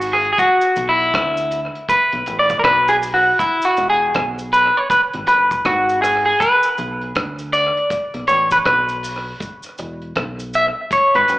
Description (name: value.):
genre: roots reggae.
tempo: 80 BPM.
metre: 4/4.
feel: swing 62% on 16ths.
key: E mixolydian.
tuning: A4 = 438 Hz.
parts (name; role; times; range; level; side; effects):
semi-hollow electric guitar; accompaniment; 0.0-11.4 s; E4 to E5; -14 LUFS; equal; phaser, dub echo, slapback echo.
deep dub fingered electric bass; bass; 0.0-11.4 s; E1 to D2; -29 LUFS; equal; none.
deep reggae drum kit; drums; 0.0-11.4 s; hi-hat, kick drum, rim click; -26 LUFS; equal; tape echo, slapback echo.
cabasa; percussion; 0.0-11.4 s; none; -40 LUFS; equal; none.
room: moderate club reverb, RT60 0.9 s.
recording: live gig heard through the venue's PA, club reverb, AM radio sound.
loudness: -14 LUFS.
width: side -17 dB against mid.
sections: 0.0-11.4 A section.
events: clean electric guitar solo 0.0-11.4.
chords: 0.4 Bm; 3.4 E; 6.4 Bm; 9.4 E5.